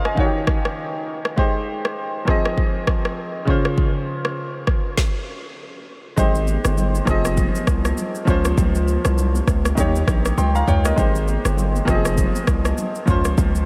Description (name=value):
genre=afrobeats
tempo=100 BPM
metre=4/4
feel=swing 58% on 16ths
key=Ab major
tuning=A4 = 445 Hz
part: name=clear grand piano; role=accompaniment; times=0.0-13.7 s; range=Db3 to C6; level=-26 LUFS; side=equal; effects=none
part: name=afro-pop drum kit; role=drums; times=0.1-13.7 s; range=kick drum, rim click, shaker, snare drum, toms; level=-24 LUFS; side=equal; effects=none
part: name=hard-hitting 808-style bass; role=bass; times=6.2-13.7 s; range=F1 to Eb2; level=-22 LUFS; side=equal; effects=none
part: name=congas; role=percussion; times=6.2-13.5 s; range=none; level=-32 LUFS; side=equal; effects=none
room=moderate huge ambient reverb, RT60 7.9 s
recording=dreamy mix soaked in reverb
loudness=-20 LUFS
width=mono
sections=0.0-6.2 A section; 6.2-13.7 B section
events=stop 5.0-6.2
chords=0.2 Eb7; 1.4 Abmaj7; 2.3 Fm7; 3.5 Dbmaj7; 5.0 N.C.; 6.2 Abmaj7; 7.1 Fm7; 8.3 Dbmaj7; 9.8 Eb7; 11.0 Abmaj7; 11.9 Fm7; 13.1 Dbmaj7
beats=0.18 0.78 | 1.38 1.98 2.58 3.18 | 3.78 4.38 4.98 5.58 | 6.18 6.78 7.38 7.98 | 8.58 9.18 9.78 10.38 | 10.98 11.58 12.18 12.78 | 13.38